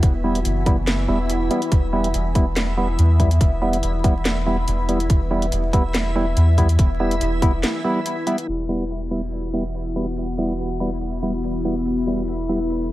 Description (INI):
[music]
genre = deep dubstep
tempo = 142 BPM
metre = 4/4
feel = swing 54% on 16ths, half-time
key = E minor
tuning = A4 = 439 Hz
[part]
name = overtone-sweeping drone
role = sustained chords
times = 0.0-12.9 s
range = E3 to A4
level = -28 LUFS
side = left 2 dB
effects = chorus, built-in reverb, phaser
[part]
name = soft dub sub bass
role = bass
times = 0.0-12.9 s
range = E1 to E2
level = -22 LUFS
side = equal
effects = none
[part]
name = electronic kick drum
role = drums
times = 0.0-7.5 s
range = none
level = -17 LUFS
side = equal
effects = none
[part]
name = garage drum kit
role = drums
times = 0.0-12.8 s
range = hi-hat, snare drum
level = -26 LUFS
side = equal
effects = none
[part]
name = backwards swelling texture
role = texture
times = 0.0-12.9 s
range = E4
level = -30 LUFS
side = equal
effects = built-in reverb
[part]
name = percussive organ stab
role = stabs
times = 0.2-12.6 s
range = G3 to E4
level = -24 LUFS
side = right 1 dB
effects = chorus, vintage 12-bit sampler grit, dub echo
[sound]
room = light reverb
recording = vinyl crackle, low-pass filter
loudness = -18 LUFS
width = side -16 dB against mid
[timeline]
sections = 0.0-8.5 A section; 8.5-12.9 B section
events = filter sweep on synth stab 0.0-8.5; break 7.6-8.5; filter sweep 8.5-12.9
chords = 0.0 Em